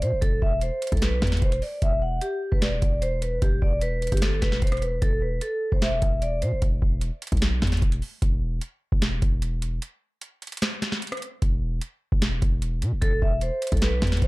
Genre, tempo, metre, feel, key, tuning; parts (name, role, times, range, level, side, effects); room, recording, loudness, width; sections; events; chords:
hip hop, trap; 150 BPM; 4/4; half-time; E minor; A4 = 440 Hz
vibraphone with medium mallets; melody; 0.0-6.6, 13.0-14.3 s; G4 to F#5; -28 LUFS; equal
hard-hitting 808-style bass; bass; 0.0-14.3 s; E1 to B2; -26 LUFS; equal
booming analog drum machine; drums; 0.0-14.3 s; hi-hat, kick drum, rim click, snare drum; -24 LUFS; equal
little or no reverb; dark, warm production; -22 LUFS; side -21 dB against mid
0.0-14.3 A section
break 9.8-11.4
0.0 Cmaj7/E; 1.8 E7(no3); 3.4 Em; 5.0 E5; 8.2 N.C.; 11.4 E5